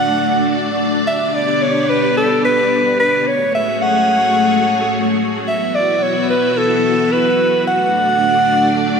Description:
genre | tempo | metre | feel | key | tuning
synthwave | 109 BPM | 4/4 | straight | F# minor | A4 = 440 Hz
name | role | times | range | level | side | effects
breathy alto saxophone | melody | 0.0-9.0 s | A4 to F#5 | -15 LUFS | right 1 dB | ping-pong delay
string machine, full ensemble | sustained chords | 0.0-9.0 s | A3 to E5 | -17 LUFS | left 1 dB | ensemble chorus
room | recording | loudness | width
wet lush hall reverb, RT60 2.2 s | bright 1980s-style digital production | -13 LUFS | side -6 dB against mid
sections
0.0-9.0 A section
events
none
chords
0.0 D; 1.1 G; 3.3 F#madd9; 5.5 Esus2; 7.7 D

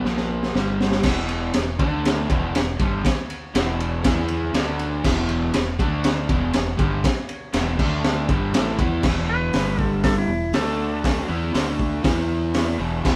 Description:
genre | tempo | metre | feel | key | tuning
garage rock duo or trio | 120 BPM | 4/4 | straight | unclear | A4 = 444 Hz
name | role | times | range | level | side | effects
crunchy overdriven guitar | riff | 0.0-13.2 s | E2 to E4 | -27 LUFS | equal | none
growling fingered electric bass | bass | 0.0-13.2 s | E1 to E2 | -30 LUFS | equal | overdrive
crunchy breakbeat drum kit | drums | 0.1-13.2 s | crash cymbal, hi-hat, kick drum, ride cymbal, snare drum | -25 LUFS | equal | none
clean lap steel guitar | melody | 9.3-11.3 s | E4 to B4 | -29 LUFS | equal | none
room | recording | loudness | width
moderate studio reverb, RT60 0.6 s | band playing live in one room | -22 LUFS | mono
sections
0.0-1.0 A section; 1.0-9.0 B section; 9.0-13.2 C section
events
drum fill 0.0-1.0; electric slide guitar solo 9.0-13.2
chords
0.0 A#5; 0.5 G5; 1.0 E5; 1.8 D5; 2.3 E5; 4.5 D5; 5.0 E5; 5.8 D5; 6.3 E5; 7.8 D5; 8.3 E5; 9.5 G5; 10.3 E5; 10.5 D5; 11.3 E5; 11.5 D5; 12.0 E5

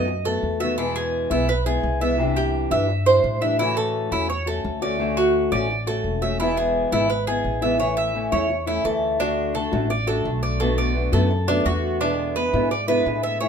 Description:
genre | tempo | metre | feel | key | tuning
latin | 171 BPM | 4/4 | straight | A major | A4 = 440 Hz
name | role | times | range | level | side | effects
fingerpicked steel-string acoustic guitar | accompaniment | 0.0-13.5 s | B2 to F#4 | -23 LUFS | left 2 dB | none
Cuban tres | arpeggios | 0.0-13.5 s | D4 to E5 | -24 LUFS | right 3 dB | none
upright bass | bass | 0.0-13.5 s | E1 to A2 | -26 LUFS | equal | none
room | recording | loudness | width
moderate studio reverb, RT60 0.7 s | minimal, uncompressed stereo recording | -19 LUFS | side -7 dB against mid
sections
0.0-7.8 A section; 7.8-13.5 B section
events
none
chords
0.0 B7; 0.8 E; 2.2 Cadd9; 3.6 A6; 5.0 Dmaj7; 6.4 E; 7.8 A; 9.2 D; 10.6 Bm7; 12.0 E7

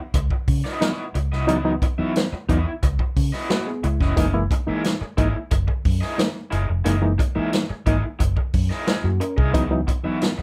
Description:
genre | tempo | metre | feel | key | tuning
funk | 89 BPM | 4/4 | straight | C# dorian | A4 = 442 Hz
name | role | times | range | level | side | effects
barky reed electric piano | stabs | 0.0-10.3 s | E3 to A#4 | -26 LUFS | equal | overdrive
raw garage guitar | accompaniment | 0.1-10.4 s | E4 to E5 | -32 LUFS | equal | overdrive, tremolo
vintage muted fingered electric bass | bass | 0.1-10.4 s | E#1 to C#3 | -25 LUFS | equal | none
swinging big-band drum kit | drums | 0.1-10.4 s | hi-hat, kick drum, snare drum | -25 LUFS | equal | none
room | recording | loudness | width
light reverb | none | -22 LUFS | mono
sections
0.0-10.4 A section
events
none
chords
0.0 C#m11; 4.2 F#13; 9.5 C#m11

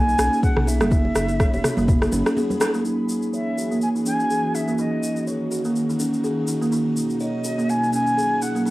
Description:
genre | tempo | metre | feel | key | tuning
afro house | 124 BPM | 4/4 | swing 56% on 16ths | unclear | A4 = 443 Hz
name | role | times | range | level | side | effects
concert flute | melody | 0.0-8.7 s | Eb5 to Ab5 | -25 LUFS | equal | cassette tape, analog delay
ethereal airy pad | sustained chords | 0.3-8.7 s | B2 to Cb6 | -31 LUFS | equal | ensemble chorus, built-in reverb, sidechain pumping, cassette tape
round analog bass | bass | 0.0-2.2 s | Fb1 to B1 | -25 LUFS | equal | sidechain pumping
buzzing kalimba | arpeggios | 0.1-8.7 s | A#3 to Db5 | -22 LUFS | equal | sidechain pumping, low-pass filter, cassette tape
egg shaker | percussion | 0.1-8.7 s | none | -36 LUFS | left 2 dB | none
afro-pop drum kit | drums | 0.2-2.7 s | rim click, toms | -24 LUFS | equal | low-pass filter on snare, low-pass filter on toms
congas | percussion | 0.2-2.7 s | none | -29 LUFS | right 1 dB | none
electronic kick drum | drums | 0.4-2.0 s | none | -20 LUFS | equal | overdrive
room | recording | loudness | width
wet studio reverb, RT60 0.6 s | home recording on cassette | -19 LUFS | side -18 dB against mid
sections
0.0-2.9 A section; 2.9-8.7 B section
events
break 2.4-2.9; band accent 2.6; filter sweep on kalimba 2.9-8.7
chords
0.0 Bmaj7; 0.9 Gb7sus4; 2.9 E; 4.8 Ebm; 6.7 Badd9

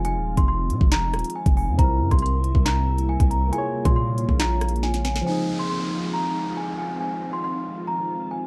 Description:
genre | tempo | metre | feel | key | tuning
hip hop, drill | 138 BPM | 4/4 | half-time | F minor | A4 = 440 Hz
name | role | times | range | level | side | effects
worn celesta | melody | 0.0-8.5 s | Ab5 to C6 | -30 LUFS | equal | delay
barky tine electric piano | accompaniment | 0.0-8.5 s | C3 to Db5 | -32 LUFS | equal | phaser
glassy FM pad | sustained chords | 0.0-8.5 s | C3 to F4 | -34 LUFS | equal | ensemble chorus, built-in reverb
hard-hitting 808-style bass | bass | 0.0-5.2 s | Eb1 to C3 | -26 LUFS | equal | none
drill drum kit | drums | 0.0-5.3 s | handclaps, hi-hat, kick drum, rim click, snare drum | -23 LUFS | equal | none
downlifter | sound effects | 5.3-8.5 s | none | -38 LUFS | equal | none
room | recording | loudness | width
light reverb | dark, warm production | -23 LUFS | mono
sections
0.0-5.3 A section; 5.3-8.5 B section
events
drum fill 4.8-5.3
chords
0.0 Fm7; 1.8 C7; 3.5 Bbm7; 5.3 Fm7

